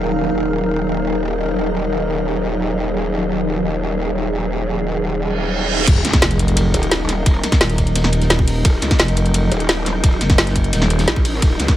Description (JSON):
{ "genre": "dark technical drum and bass", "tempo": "173 BPM", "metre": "4/4", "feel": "straight", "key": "Eb minor", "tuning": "A4 = 439 Hz", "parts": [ { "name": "swarming drone", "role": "sustained chords", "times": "0.0-11.8 s", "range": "Gb3 to Eb5", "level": "-23 LUFS", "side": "equal", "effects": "built-in reverb, sidechain pumping" }, { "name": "growl bass", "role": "bass", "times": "0.0-11.8 s", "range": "Eb1 to Db2", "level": "-22 LUFS", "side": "equal", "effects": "chorus, sidechain pumping" }, { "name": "granular cloud pad", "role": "texture", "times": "0.0-5.9 s", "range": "Eb4 to F5", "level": "-25 LUFS", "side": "left 1 dB", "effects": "built-in reverb, sidechain pumping" }, { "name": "reverse cymbal and impact", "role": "sound effects", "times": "5.3-7.3 s", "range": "none", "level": "-23 LUFS", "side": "right 1 dB", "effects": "none" }, { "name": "crunchy breakbeat drum kit", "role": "drums", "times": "5.9-11.8 s", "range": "hi-hat, ride cymbal, snare drum", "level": "-29 LUFS", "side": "equal", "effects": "high-pass filter on cymbals, high-pass filter on hats, high-pass filter on snare, high-pass filter on room" }, { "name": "drum and bass drum kit", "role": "drums", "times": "5.9-11.8 s", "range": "crash cymbal, hi-hat, snare drum", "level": "-18 LUFS", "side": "equal", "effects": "low-pass filter on cymbals, low-pass filter on hats, low-pass filter on snare, low-pass filter on room" }, { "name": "electronic kick drum", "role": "drums", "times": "5.9-11.8 s", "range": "none", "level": "-15 LUFS", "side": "equal", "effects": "none" }, { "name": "growling FM bass", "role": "bass", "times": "6.2-11.1 s", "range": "Eb1 to Gb1", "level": "-17 LUFS", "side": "equal", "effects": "none" } ], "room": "light reverb", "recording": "none", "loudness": "-15 LUFS", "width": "side -12 dB against mid", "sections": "0.0-5.9 A section; 5.9-11.8 B section", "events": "reverse cymbal 5.3-5.9; drop 5.9-11.8; impact 5.9-7.3", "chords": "0.0 Ebm" }